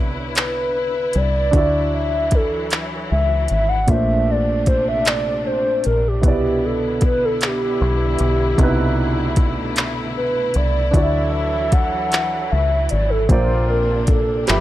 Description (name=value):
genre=slow six-eight R&B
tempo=51 BPM (dotted quarters)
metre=6/8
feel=straight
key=C major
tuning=A4 = 440 Hz
part: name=warm grand piano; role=accompaniment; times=0.0-14.6 s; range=Bb2 to E5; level=-25 LUFS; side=right 3 dB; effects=none
part: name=clear studio string section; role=sustained chords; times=0.0-14.6 s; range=C3 to B4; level=-28 LUFS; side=left 2 dB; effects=none
part: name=deep dub fingered electric bass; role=bass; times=0.0-14.6 s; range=G1 to D2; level=-21 LUFS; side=equal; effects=none
part: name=hollow clarinet-like synth lead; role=melody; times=0.4-14.6 s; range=G4 to B5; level=-21 LUFS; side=equal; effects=chorus
part: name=smooth R&B drum kit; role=drums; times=0.4-14.6 s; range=handclaps, hi-hat, kick drum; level=-18 LUFS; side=equal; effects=none
part: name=warm horn section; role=stabs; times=7.4-14.6 s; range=B2 to A4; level=-29 LUFS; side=left 5 dB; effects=none
room=small room ambience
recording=dry, gritty hardware recording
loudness=-16 LUFS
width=side -14 dB against mid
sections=0.0-14.6 A section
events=soft synth lead solo 0.0-14.6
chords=0.0 Cmaj9; 1.5 Dmaj9; 3.9 Bbmaj9; 6.2 Cmaj9; 10.9 Dmaj9; 13.3 Bbadd9